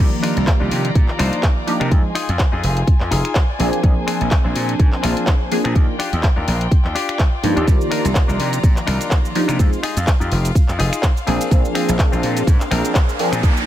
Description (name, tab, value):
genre	filtered disco house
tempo	125 BPM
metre	4/4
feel	swing 55% on 16ths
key	unclear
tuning	A4 = 440 Hz
part	funky polysynth comp	accompaniment	0.0-13.6 s	Eb3 to D5	-22 LUFS	equal	chorus, phaser, sidechain pumping, low-pass filter
part	clear studio string section	sustained chords	0.0-13.7 s	D4 to Bb5	-28 LUFS	left 2 dB	sidechain pumping, low-pass filter
part	gritty slap bass	bass	0.0-13.5 s	F1 to C3	-20 LUFS	equal	overdrive, sidechain pumping, low-pass filter
part	house drum kit	drums	0.0-13.7 s	cabasa, crash cymbal, finger snaps, handclaps, hi-hat	-25 LUFS	equal	sidechain pumping on hats, sidechain pumping on cymbals, sidechain pumping on perc
part	direct-recorded clean electric guitar	riff	0.2-13.4 s	C4 to Ab5	-26 LUFS	left 4 dB	sidechain pumping, low-pass filter
part	electronic kick drum	drums	0.5-13.5 s	none	-15 LUFS	equal	none
part	tambourine	percussion	7.7-13.7 s	none	-44 LUFS	left 3 dB	none
part	riser	sound effects	12.1-13.7 s	none	-28 LUFS	right 2 dB	none
room	little or no reverb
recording	none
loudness	-15 LUFS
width	side -12 dB against mid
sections	0.0-13.7 A section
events	clean electric guitar fill 2.9-3.8; riser 12.1-13.7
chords	0.0 Cm11; 1.9 Fm7; 3.6 Bb9; 5.8 Ebmaj9; 7.7 Cm11; 9.6 Fm7; 11.3 Bb9